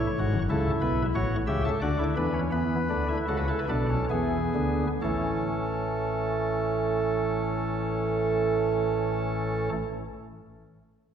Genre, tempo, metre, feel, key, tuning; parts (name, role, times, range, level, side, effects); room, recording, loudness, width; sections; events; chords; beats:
classical, baroque-style 3-part fugue for pipe organ; 64-95 BPM; 3/4; straight; A major; A4 = 441 Hz
chamber organ, cornet; solo; 0.0-9.7 s; F#1 to E5; -25 LUFS; right 1 dB
wet concert hall reverb, RT60 1.9 s; heard from further back in the room; -25 LUFS; side -8 dB against mid
0.0-5.0 A section; 5.0-10.6 B section
slowing down 0.0-5.0
0.0 N.C.; 0.5 A7; 1.8 D; 2.5 E7sus4; 4.1 E7; 5.0 A
| 0.50 1.15 1.82 | 2.53 3.28 4.09 | 4.99 5.93 6.87 | 7.81 8.74 9.68